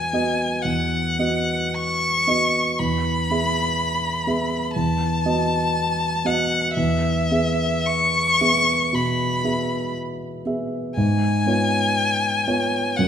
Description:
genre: classical, romantic duo for violin and grand piano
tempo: 52-62 BPM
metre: 4/4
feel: rubato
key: E major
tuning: A4 = 441 Hz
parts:
  - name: rich violin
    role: melody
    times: 0.0-13.1 s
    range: E5 to C#6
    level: -21 LUFS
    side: left 2 dB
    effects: none
  - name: dark grand piano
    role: accompaniment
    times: 0.0-13.1 s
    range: E2 to E5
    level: -22 LUFS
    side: right 1 dB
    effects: none
room: wet scoring stage reverb, RT60 1.6 s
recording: minimal, uncompressed stereo recording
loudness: -19 LUFS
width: side -8 dB against mid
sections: 0.0-13.1 A section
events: none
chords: 0.0 B/E; 2.8 E; 4.8 B7/E; 6.8 E; 11.0 C#7/G#

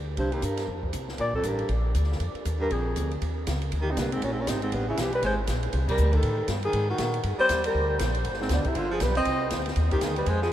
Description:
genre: jazz, small-group swing and bop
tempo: 238 BPM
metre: 4/4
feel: swing 60% on 8ths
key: Bb major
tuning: A4 = 440 Hz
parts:
  - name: upright bass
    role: bass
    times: 0.0-10.5 s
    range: G1 to Bb2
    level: -28 LUFS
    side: equal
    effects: none
  - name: breathy alto saxophone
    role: melody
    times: 0.2-10.5 s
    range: Bb3 to Eb5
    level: -29 LUFS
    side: left 1 dB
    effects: none
  - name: warm baritone saxophone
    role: second line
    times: 0.2-10.5 s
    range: Eb2 to C4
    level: -31 LUFS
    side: right 2 dB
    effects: none
  - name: open jazz drum kit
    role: drums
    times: 0.2-10.5 s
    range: crash cymbal, hi-hat, kick drum, ride cymbal, snare drum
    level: -34 LUFS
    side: equal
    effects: none
room: moderate huge ambient reverb, RT60 9.7 s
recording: in a vast, echoing space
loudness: -24 LUFS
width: side -12 dB against mid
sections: 0.0-3.2 A section; 3.2-10.5 B section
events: band accent 5.9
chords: 0.2 C5; 0.7 F5; 1.2 Bb6; 2.2 Ebadd9; 2.7 Bb7; 3.2 Cmadd9; 4.2 Abadd9; 4.7 Asus2; 5.2 Abmaj9#11; 6.2 Gsus2; 6.7 Absus2; 7.2 Gm; 8.3 G; 9.3 Cmadd9

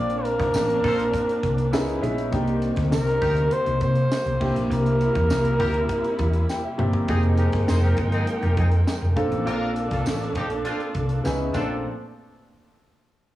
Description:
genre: polished 1980s jazz-funk pop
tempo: 101 BPM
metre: 4/4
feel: straight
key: Bb major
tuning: A4 = 441 Hz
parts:
  - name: breathy flugelhorn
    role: melody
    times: 0.0-6.8 s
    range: Bb4 to D5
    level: -24 LUFS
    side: equal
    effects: cassette tape
  - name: clear grand piano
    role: accompaniment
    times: 0.0-11.9 s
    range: Bb3 to A5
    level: -28 LUFS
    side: left 1 dB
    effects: wide subtle chorus
  - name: warm studio string section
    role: sustained chords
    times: 0.0-11.8 s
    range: Bb2 to G5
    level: -30 LUFS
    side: right 2 dB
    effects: none
  - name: hollow-body short-scale fingered electric bass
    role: bass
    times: 0.0-11.8 s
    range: F1 to C3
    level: -24 LUFS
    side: equal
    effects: none
  - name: crisp fusion drum kit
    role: drums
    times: 0.1-11.7 s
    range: crash cymbal, hi-hat, kick drum, snare drum, toms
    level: -31 LUFS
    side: equal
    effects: cassette tape
  - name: tambourine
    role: percussion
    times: 0.5-11.8 s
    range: none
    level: -42 LUFS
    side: right 4 dB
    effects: none
  - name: clear horn section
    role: second line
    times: 0.8-11.7 s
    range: F3 to C5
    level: -32 LUFS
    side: left 1 dB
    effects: none
room: small room reverb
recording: home recording on cassette, small room ambience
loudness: -20 LUFS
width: side -15 dB against mid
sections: 0.0-7.1 A section; 7.1-11.8 B section; 11.8-13.4 C section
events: grand piano fill 6.2-7.1; drum fill 6.5-7.1, 11.2-11.8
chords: 0.0 Bbmaj9; 1.7 Dbm7; 2.3 Cm7; 4.4 C7; 7.1 Fm11; 9.2 Bbmaj9; 11.2 Dbm7; 11.5 Bbmaj9; 11.8 N.C.

